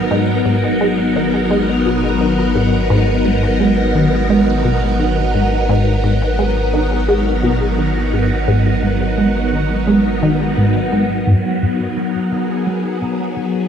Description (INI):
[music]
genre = ambient, sequencer-driven space music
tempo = 86 BPM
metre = 4/4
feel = straight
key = G# minor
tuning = A4 = 439 Hz
[part]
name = phased string machine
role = sustained chords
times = 0.0-13.7 s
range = F#3 to A#4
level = -17 LUFS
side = left 1 dB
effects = ensemble chorus, phaser
[part]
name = warm sub bass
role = bass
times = 0.0-11.2 s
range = G#1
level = -21 LUFS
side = equal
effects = none
[part]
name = bubbling stepped-filter texture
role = texture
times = 0.0-13.7 s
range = F#5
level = -27 LUFS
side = right 4 dB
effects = chorus, built-in reverb
[part]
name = resonant blip pluck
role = riff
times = 0.1-13.6 s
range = G#2 to G#3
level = -17 LUFS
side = equal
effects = phaser, vintage 12-bit sampler grit, ping-pong delay
[sound]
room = moderate plate reverb, RT60 2.3 s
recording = dreamy mix soaked in reverb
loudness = -13 LUFS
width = side -8 dB against mid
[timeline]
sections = 0.0-11.3 A section; 11.3-13.7 B section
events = filter sweep on synth arpeggio sound 0.0-11.3, 11.3-13.7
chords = 0.0 G#m7